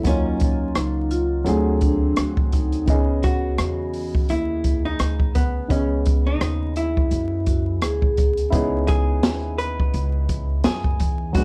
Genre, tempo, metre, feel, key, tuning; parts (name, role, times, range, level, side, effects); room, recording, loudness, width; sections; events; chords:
hip hop, jazz-hop; 85 BPM; 4/4; swing 58% on 16ths; C# minor; A4 = 439 Hz
hollow-body jazz guitar; melody; 0.0-11.4 s; B3 to B4; -29 LUFS; equal
dark grand piano; accompaniment; 0.0-11.4 s; C#3 to D#5; -29 LUFS; equal
upright bass; bass; 0.0-11.4 s; G#1 to F#2; -27 LUFS; equal
open jazz drum kit; drums; 0.0-11.4 s; hi-hat, kick drum, rim click, snare drum; -24 LUFS; equal
vibraphone with soft mallets; second line; 0.8-3.0, 7.5-8.5 s; D4 to G#4; -28 LUFS; equal
little or no reverb; dry, gritty hardware recording, transformer saturation, vinyl crackle; -21 LUFS; mono
0.0-8.5 A section; 8.5-11.4 B section
0.1 D#m9; 1.5 D7#11; 2.9 C#m9